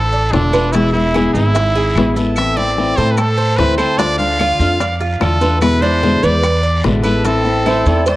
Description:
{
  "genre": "latin, Cuban son and guajira",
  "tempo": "147 BPM",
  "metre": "4/4",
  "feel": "straight",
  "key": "A harmonic minor",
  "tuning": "A4 = 438 Hz",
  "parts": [
    { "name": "brilliant trumpet", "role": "melody", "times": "0.0-8.1 s", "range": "D4 to F5", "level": "-18 LUFS", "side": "equal", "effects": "none" },
    { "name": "Cuban tres", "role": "arpeggios", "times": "0.0-8.2 s", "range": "C4 to E5", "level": "-20 LUFS", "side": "right 3 dB", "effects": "none" },
    { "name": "upright bass", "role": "bass", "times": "0.0-8.2 s", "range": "E1 to A2", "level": "-17 LUFS", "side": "equal", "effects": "none" },
    { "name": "maracas", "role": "percussion", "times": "0.1-8.2 s", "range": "none", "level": "-35 LUFS", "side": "right 2 dB", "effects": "none" },
    { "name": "nylon-string guitar", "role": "accompaniment", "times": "0.3-8.1 s", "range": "B2 to F4", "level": "-18 LUFS", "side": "left 3 dB", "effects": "none" },
    { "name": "bongos", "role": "percussion", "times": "0.3-8.2 s", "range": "none", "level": "-26 LUFS", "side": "left 5 dB", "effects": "none" },
    { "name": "guiro", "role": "percussion", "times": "0.3-8.2 s", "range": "none", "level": "-33 LUFS", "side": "left 2 dB", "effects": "none" },
    { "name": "claves", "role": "percussion", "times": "0.5-7.9 s", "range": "none", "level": "-33 LUFS", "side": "equal", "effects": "none" },
    { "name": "breathy jazz flute", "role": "second line", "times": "7.7-8.2 s", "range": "C5 to D5", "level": "-20 LUFS", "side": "right 2 dB", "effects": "none" }
  ],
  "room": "moderate spring reverb, RT60 2.0 s",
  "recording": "cassette tape",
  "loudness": "-12 LUFS",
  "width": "side -16 dB against mid",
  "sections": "0.0-8.2 A section",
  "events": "none",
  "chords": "0.0 Dm; 0.7 E; 2.4 Am; 4.0 Dm; 5.6 E7; 7.3 Am"
}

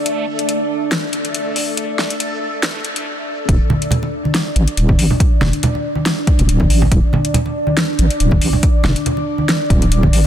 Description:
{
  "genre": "deep dubstep",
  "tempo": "140 BPM",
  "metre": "4/4",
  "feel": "swing 54% on 16ths, half-time",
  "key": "unclear",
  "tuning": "A4 = 440 Hz",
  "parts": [
    { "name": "deep dark ambient pad", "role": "sustained chords", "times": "0.0-10.3 s", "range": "D4 to D5", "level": "-22 LUFS", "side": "equal", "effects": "chorus, built-in reverb, vintage 12-bit sampler grit" },
    { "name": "backwards swelling texture", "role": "texture", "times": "0.0-3.1 s", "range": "A3 to A4", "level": "-27 LUFS", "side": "left 2 dB", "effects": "built-in reverb" },
    { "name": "deep house drum kit", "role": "drums", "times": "0.1-10.2 s", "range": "hi-hat, snare drum", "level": "-21 LUFS", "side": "left 1 dB", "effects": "overdrive" },
    { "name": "deep soft wobble bass", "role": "bass", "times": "3.5-10.2 s", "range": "D1 to A1", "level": "-14 LUFS", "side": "equal", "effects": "chorus" },
    { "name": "electronic kick drum", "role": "drums", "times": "3.5-10.1 s", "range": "none", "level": "-15 LUFS", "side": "equal", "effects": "overdrive" },
    { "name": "congas", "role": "percussion", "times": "3.7-10.3 s", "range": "none", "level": "-19 LUFS", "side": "right 1 dB", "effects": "dub echo" }
  ],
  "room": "digital ambience",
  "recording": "dense, heavily limited modern master, high-pass filter",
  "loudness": "-14 LUFS",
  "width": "side -10 dB against mid",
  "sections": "0.0-3.5 A section; 3.5-10.3 B section",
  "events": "build-up 0.0-3.5; filter sweep 0.0-3.5; stop 3.1-3.5; drop 3.5-10.3",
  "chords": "0.0 D5; 3.5 N.C."
}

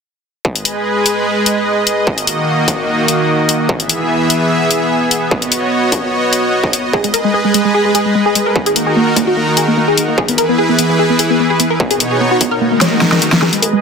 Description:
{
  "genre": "heavy wobble dubstep",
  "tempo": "148 BPM",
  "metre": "4/4",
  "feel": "half-time",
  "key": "G# minor",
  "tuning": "A4 = 438 Hz",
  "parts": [
    { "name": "supersaw pad", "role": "sustained chords", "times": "0.4-13.8 s", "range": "B2 to E5", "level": "-14 LUFS", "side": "equal", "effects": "sidechain pumping, low-pass filter" },
    { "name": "electronic kick drum", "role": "drums", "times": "0.4-12.5 s", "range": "none", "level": "-19 LUFS", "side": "equal", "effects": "distortion, high-pass filter on kick" },
    { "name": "dubstep drum kit", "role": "drums", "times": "0.6-13.7 s", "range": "hi-hat, snare drum", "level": "-14 LUFS", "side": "left 2 dB", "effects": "none" },
    { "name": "wide unison pluck", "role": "melody", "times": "6.9-13.8 s", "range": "G#3 to D#5", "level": "-14 LUFS", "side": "equal", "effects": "analog chorus, digital delay" },
    { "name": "swell and riser", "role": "sound effects", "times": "12.7-13.8 s", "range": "none", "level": "-21 LUFS", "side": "left 5 dB", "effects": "none" }
  ],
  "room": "moderate digital room reverb, RT60 1.2 s",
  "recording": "dense, heavily limited modern master",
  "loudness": "-11 LUFS",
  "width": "side -5 dB against mid",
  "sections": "0.4-13.4 A section",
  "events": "swell 12.7-13.4; drum fill 12.8-13.4, 13.4-13.8; kick drops out 13.0-13.4",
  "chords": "0.4 G#m; 2.1 D#m; 3.7 E; 5.3 Badd9; 6.9 G#m; 8.6 D#m; 10.2 E; 11.8 Badd9; 12.6 D#m"
}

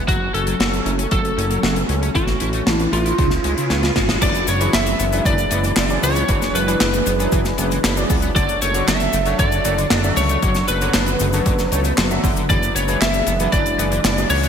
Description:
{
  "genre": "synthwave",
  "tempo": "116 BPM",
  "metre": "4/4",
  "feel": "straight",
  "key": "unclear",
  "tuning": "A4 = 441 Hz",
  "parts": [
    { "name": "analog string pad", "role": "sustained chords", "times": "0.0-14.5 s", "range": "C#3 to B4", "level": "-26 LUFS", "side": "equal", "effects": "ensemble chorus, sidechain pumping" },
    { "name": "fat analog bass", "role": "bass", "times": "0.0-14.5 s", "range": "F#1 to C#2", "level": "-22 LUFS", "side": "equal", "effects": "tube saturation, sidechain pumping" },
    { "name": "lightly driven lead guitar", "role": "melody", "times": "0.1-14.5 s", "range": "E#4 to E5", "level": "-22 LUFS", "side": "right 1 dB", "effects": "analog chorus, digital delay" },
    { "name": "crunchy overdriven guitar", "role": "riff", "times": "0.1-14.5 s", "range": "C#3 to A4", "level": "-29 LUFS", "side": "left 2 dB", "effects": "analog chorus, digital delay" },
    { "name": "electronic kick drum", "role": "drums", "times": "0.1-13.6 s", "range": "none", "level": "-21 LUFS", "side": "equal", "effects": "none" },
    { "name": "modern studio drum kit", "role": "drums", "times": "0.1-14.5 s", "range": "cabasa, crash cymbal, handclaps, hi-hat, snare drum", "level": "-22 LUFS", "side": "left 1 dB", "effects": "gated reverb" },
    { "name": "riser", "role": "sound effects", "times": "1.3-4.2 s", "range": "none", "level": "-29 LUFS", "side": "right 1 dB", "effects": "none" },
    { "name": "clear electric grand piano", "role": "stabs", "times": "4.2-14.5 s", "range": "F#3 to E5", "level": "-26 LUFS", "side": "equal", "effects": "analog chorus, digital delay" }
  ],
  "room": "moderate lush hall reverb, RT60 2.1 s",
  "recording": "bright 1980s-style digital production",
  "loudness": "-16 LUFS",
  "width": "side -8 dB against mid",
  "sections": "0.0-4.2 A section; 4.2-14.5 B section",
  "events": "riser 1.3-4.2; drum fill 3.7-4.2",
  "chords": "0.1 F#m; 2.2 A; 3.2 C#7; 4.2 E7/F#; 8.4 Dmaj7/F#; 12.5 E7/F#"
}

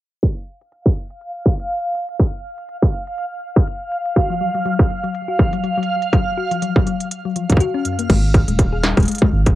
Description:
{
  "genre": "IDM",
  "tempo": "122 BPM",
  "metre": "4/4",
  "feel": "swing 56% on 16ths",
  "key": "unclear",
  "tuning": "A4 = 441 Hz",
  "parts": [
    { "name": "electronic kick drum", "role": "drums", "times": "0.2-9.6 s", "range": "none", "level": "-15 LUFS", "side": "equal", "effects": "distortion, cassette tape" },
    { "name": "industrial drum kit", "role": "drums", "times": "0.2-9.6 s", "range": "crash cymbal, hi-hat, snare drum", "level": "-25 LUFS", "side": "right 1 dB", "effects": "cassette tape" },
    { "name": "backwards swelling texture", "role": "texture", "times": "1.3-8.1 s", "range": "F5", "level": "-24 LUFS", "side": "right 2 dB", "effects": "built-in reverb, cassette tape" },
    { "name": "thumb-piano-like synth pluck", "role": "arpeggios", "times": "4.2-9.3 s", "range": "Gb2 to Ab4", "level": "-23 LUFS", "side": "left 7 dB", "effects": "chorus, cassette tape, analog delay" },
    { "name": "round analog bass", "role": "bass", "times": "8.1-9.6 s", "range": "Eb1 to Ab1", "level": "-17 LUFS", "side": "equal", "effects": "none" }
  ],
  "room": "light reverb",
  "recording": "home recording on cassette, low-pass filter",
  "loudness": "-16 LUFS",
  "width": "side -15 dB against mid",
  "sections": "0.2-8.1 A section; 8.1-9.6 B section",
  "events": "filter sweep 0.2-8.1; kick drops out 7.6-8.1",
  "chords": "0.2 N.C.; 4.2 Gbmaj7(no3); 8.1 Ab5"
}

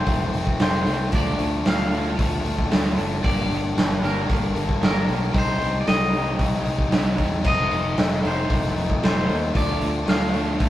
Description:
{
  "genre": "indie rock",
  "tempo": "114 BPM",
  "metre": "4/4",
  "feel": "straight",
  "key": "G minor",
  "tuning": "A4 = 440 Hz",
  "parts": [
    { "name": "twangy electric guitar", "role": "melody", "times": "0.0-10.7 s", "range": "Bb4 to F5", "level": "-28 LUFS", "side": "left 1 dB", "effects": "none" },
    { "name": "ensemble organ-string", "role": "sustained chords", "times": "0.0-10.7 s", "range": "F4 to Bb5", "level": "-40 LUFS", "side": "equal", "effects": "none" },
    { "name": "biting overdriven guitar", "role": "riff", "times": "0.0-10.7 s", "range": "F2 to Eb4", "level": "-26 LUFS", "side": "left 2 dB", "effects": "none" },
    { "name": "crunchy overdriven guitar", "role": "riff", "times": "0.0-10.7 s", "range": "Eb3 to A4", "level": "-34 LUFS", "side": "right 4 dB", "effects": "none" },
    { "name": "fingered electric bass", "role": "bass", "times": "0.0-10.7 s", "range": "F1 to E2", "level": "-28 LUFS", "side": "equal", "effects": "none" },
    { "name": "raw garage drum kit", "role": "drums", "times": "0.1-10.7 s", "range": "crash cymbal, hi-hat, kick drum, snare drum", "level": "-22 LUFS", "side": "equal", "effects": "none" }
  ],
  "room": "light reverb",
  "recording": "rough rehearsal-room recording",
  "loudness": "-19 LUFS",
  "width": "side -13 dB against mid",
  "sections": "0.0-10.7 A section",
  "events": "none",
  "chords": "0.0 F7; 1.1 Dm7; 3.2 Gm; 5.3 Cm7; 7.4 F7; 9.6 Dm7"
}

